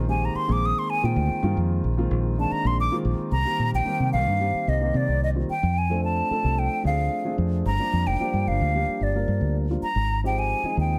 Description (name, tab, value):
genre	jazz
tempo	111 BPM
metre	4/4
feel	straight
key	C minor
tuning	A4 = 440 Hz
part	dark baby grand piano	accompaniment	0.0-11.0 s	Eb3 to Bb4	-32 LUFS	equal	none
part	fingered electric bass	bass	0.0-11.0 s	F1 to C3	-26 LUFS	equal	none
part	mellow hollow silver concert flute	melody	0.1-11.0 s	D5 to Eb6	-29 LUFS	equal	slapback echo
room	light reverb, small room ambience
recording	none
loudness	-24 LUFS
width	mono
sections	0.0-3.3 A section; 3.3-11.0 B section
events	flute solo 0.0-3.3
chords	0.0 Bb9sus4; 3.3 Cm7; 5.5 Dm7; 7.7 Gm7; 9.8 Fm9